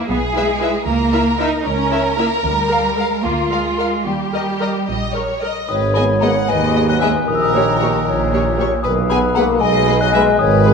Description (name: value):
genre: cinematic, playful, whimsical film cue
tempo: 76 BPM (dotted quarters)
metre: 6/8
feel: straight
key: G# minor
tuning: A4 = 440 Hz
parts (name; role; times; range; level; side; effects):
- rich studio violin section; second line; 0.0-10.7 s; E#4 to G#5; -21 LUFS; left 1 dB; none
- warm studio cello section; bass; 0.0-10.7 s; D#2 to D#4; -22 LUFS; right 2 dB; none
- warm studio double bass section; bass; 0.1-10.7 s; G#1 to D#2; -23 LUFS; right 3 dB; none
- warm studio viola section; accompaniment; 0.3-10.7 s; G#3 to B4; -25 LUFS; right 2 dB; none
- rich studio violin section; melody; 0.4-10.7 s; B4 to E#5; -26 LUFS; left 4 dB; none
- glockenspiel with rubber mallets; melody; 5.7-10.7 s; G#5 to F#6; -20 LUFS; left 7 dB; none
- mellow hollow silver concert flute; second line; 5.7-10.7 s; A#4 to D#5; -21 LUFS; left 1 dB; none
- mellow French horn section; sustained chords; 5.7-10.7 s; D#3 to B3; -21 LUFS; left 3 dB; none
- warm tuba; bass; 5.7-10.7 s; G#1 to D#2; -22 LUFS; right 4 dB; none
room: wet scoring stage reverb, RT60 1.8 s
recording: minimal, uncompressed stereo recording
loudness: -14 LUFS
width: side -5 dB against mid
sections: 0.0-5.7 A section; 5.7-10.7 B section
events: none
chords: 0.0 E; 0.9 A#dim/C#; 2.4 A#7/D; 4.1 D#; 5.7 G#m; 7.3 D#7/A#; 8.8 G#m/B